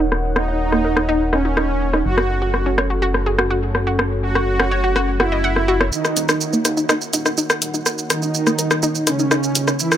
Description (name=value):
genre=melodic techno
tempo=124 BPM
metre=4/4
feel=straight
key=Eb phrygian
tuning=A4 = 440 Hz
part: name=dark analog pad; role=sustained chords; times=0.0-10.0 s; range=Db4 to Gb5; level=-27 LUFS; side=equal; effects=chorus
part: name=analog pluck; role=arpeggios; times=0.0-9.7 s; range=Bb3 to Gb5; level=-23 LUFS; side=equal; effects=chorus, tape echo
part: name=fat analog bass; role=bass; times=0.0-9.8 s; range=Eb1 to Eb2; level=-23 LUFS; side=equal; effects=high-pass filter
part: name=punchy analog drum machine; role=drums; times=0.1-10.0 s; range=hi-hat, rim click, shaker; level=-20 LUFS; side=equal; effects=overdrive, high-pass filter on snare, low-pass filter on snare, high-pass filter on perc, low-pass filter on perc, high-pass filter on hats, low-pass filter on hats
part: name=soft supersaw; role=melody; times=0.4-10.0 s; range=Db3 to Gb4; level=-23 LUFS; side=right 2 dB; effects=low-pass filter, tape echo
room=little or no reverb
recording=none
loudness=-16 LUFS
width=side -10 dB against mid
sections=0.0-5.9 A section; 5.9-10.0 B section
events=filter sweep on synth arpeggio sound 0.0-5.9, 5.9-10.0; filter sweep on supersaw synth 0.0-5.9; filter sweep on analog synth pad 0.0-5.9; build-up 5.9-10.0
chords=0.0 Ebm7; 2.1 Gbm; 5.9 Ebm7